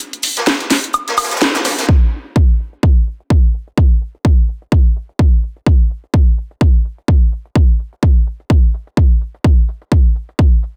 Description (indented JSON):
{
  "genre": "house",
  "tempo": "127 BPM",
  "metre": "4/4",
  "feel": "swing 58% on 16ths",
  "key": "none",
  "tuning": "none",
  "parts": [
    { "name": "house drum kit", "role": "drums", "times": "0.0-10.7 s", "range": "hi-hat, shaker, snare drum, woodblock", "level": "-18 LUFS", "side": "equal", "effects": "overdrive, low-pass filter on hats, low-pass filter on snare, low-pass filter on perc" },
    { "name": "shaker and snare drum", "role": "drums", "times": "0.2-1.9 s", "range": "none", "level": "-22 LUFS", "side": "equal", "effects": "sidechain pumping on hats, high-pass filter on hats, high-pass filter on snare, sidechain pumping on perc, high-pass filter on perc, high-pass filter on room" },
    { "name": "electronic kick drum", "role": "drums", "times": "1.9-10.5 s", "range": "none", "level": "-13 LUFS", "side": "equal", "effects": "overdrive" }
  ],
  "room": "studio reverb",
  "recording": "dense, heavily limited modern master",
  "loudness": "-14 LUFS",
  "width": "mono",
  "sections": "0.0-1.9 A section; 1.9-10.8 B section",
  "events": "break 0.0-1.9; band accent 1.4",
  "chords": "none"
}